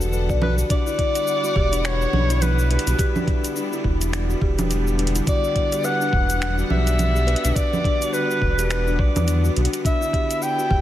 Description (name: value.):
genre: organic downtempo.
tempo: 105 BPM.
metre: 4/4.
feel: swing 58% on 16ths.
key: E minor.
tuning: A4 = 440 Hz.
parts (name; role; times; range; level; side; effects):
bright symphonic string section; sustained chords; 0.0-10.8 s; D3 to F#5; -30 LUFS; right 1 dB; sidechain pumping.
round analog bass; bass; 0.0-10.8 s; E1 to E2; -21 LUFS; equal; none.
deep house drum kit; drums; 0.0-10.7 s; cabasa, congas, finger snaps, hi-hat; -27 LUFS; right 3 dB; none.
buzzing kalimba; arpeggios; 0.1-10.8 s; D4 to D5; -27 LUFS; left 2 dB; digital delay.
electronic kick drum; drums; 0.3-10.8 s; none; -22 LUFS; equal; none.
bright clarinet; melody; 0.4-10.8 s; B4 to G5; -24 LUFS; equal; digital delay.
room: light reverb, small room reverb.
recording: none.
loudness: -18 LUFS.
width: side -13 dB against mid.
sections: 0.7-10.8 A section.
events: none.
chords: 0.0 Gmaj7/E; 0.7 Em9.